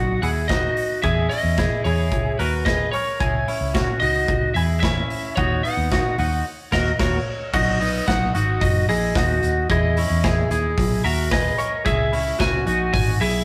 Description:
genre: jangly indie pop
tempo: 111 BPM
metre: 4/4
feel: straight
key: B major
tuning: A4 = 440 Hz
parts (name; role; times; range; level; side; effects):
- lightly driven lead guitar; melody; 0.0-13.4 s; B4 to G#5; -28 LUFS; equal; tape echo
- twelve-string electric guitar; arpeggios; 0.0-13.4 s; B3 to C#5; -26 LUFS; equal; spring reverb
- vintage muted fingered electric bass; bass; 0.0-13.4 s; F#1 to E2; -26 LUFS; equal; none
- big rock drum kit; drums; 0.2-13.3 s; crash cymbal, hi-hat, kick drum, snare drum; -27 LUFS; equal; none
room: light reverb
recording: rough rehearsal-room recording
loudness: -21 LUFS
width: mono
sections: 0.0-7.5 A section; 7.5-13.4 B section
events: band accent 6.5-7.5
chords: 0.0 B; 1.0 Emaj7; 3.2 C#m; 5.4 D#m7; 7.5 B; 9.7 Emaj7; 11.9 C#m7

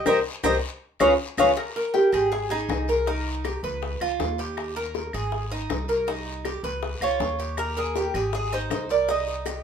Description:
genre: latin, Cuban son and guajira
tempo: 160 BPM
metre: 4/4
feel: straight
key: unclear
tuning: A4 = 440 Hz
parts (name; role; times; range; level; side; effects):
- Cuban tres; melody; 0.0-3.8, 7.0-9.6 s; G4 to F5; -24 LUFS; right 1 dB; none
- Cuban tres; arpeggios; 0.0-9.6 s; Db4 to C5; -28 LUFS; right 1 dB; none
- upright bass; bass; 0.0-9.6 s; Ab1 to Eb2; -32 LUFS; left 1 dB; none
- bongos; percussion; 0.1-9.6 s; none; -31 LUFS; left 7 dB; none
- claves; percussion; 0.1-9.6 s; none; -37 LUFS; equal; none
- guiro; percussion; 0.1-9.6 s; none; -40 LUFS; left 5 dB; none
- maracas; percussion; 0.1-1.5, 7.6-9.6 s; none; -41 LUFS; right 4 dB; none
room: moderate studio reverb, RT60 0.5 s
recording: minimal, uncompressed stereo recording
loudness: -23 LUFS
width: side -7 dB against mid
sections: 0.0-1.6 A section; 1.6-9.6 B section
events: Cuban tres solo 0.0-1.6; band accent 0.1-1.6; drum fill 1.0-1.6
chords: 0.1 Cm7; 0.8 Db7; 1.6 Absus2; 2.3 Ab; 3.1 Cm7; 3.8 Db7; 4.6 Eb; 5.3 Ab; 6.1 Cm; 6.8 Db7; 7.6 Eb; 8.3 Ab; 9.1 Cm

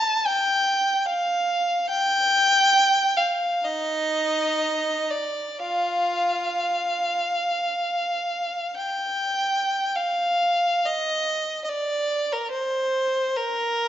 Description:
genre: classical, free, expressive piece for unaccompanied violin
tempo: free time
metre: none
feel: none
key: unclear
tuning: A4 = 439 Hz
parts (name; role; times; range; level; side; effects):
- clear violin; solo; 0.0-13.9 s; Eb4 to A5; -21 LUFS; equal; none
room: wet scoring stage reverb, RT60 1.6 s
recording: nothing above 7.7 kHz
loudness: -21 LUFS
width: side -11 dB against mid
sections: 0.0-10.0 A section; 10.0-13.9 B section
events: none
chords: none

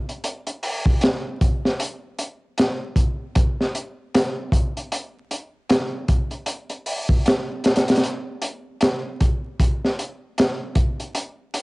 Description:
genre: trip hop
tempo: 77 BPM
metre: 4/4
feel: swing 60% on 16ths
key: none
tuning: none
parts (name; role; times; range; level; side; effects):
- crunchy breakbeat drum kit; drums; 0.1-11.6 s; hi-hat, kick drum, snare drum; -19 LUFS; equal; cassette tape
room: light reverb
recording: home recording on cassette, vinyl crackle, nothing above 10.5 kHz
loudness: -20 LUFS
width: side -27 dB against mid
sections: 0.0-11.6 A section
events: none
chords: none

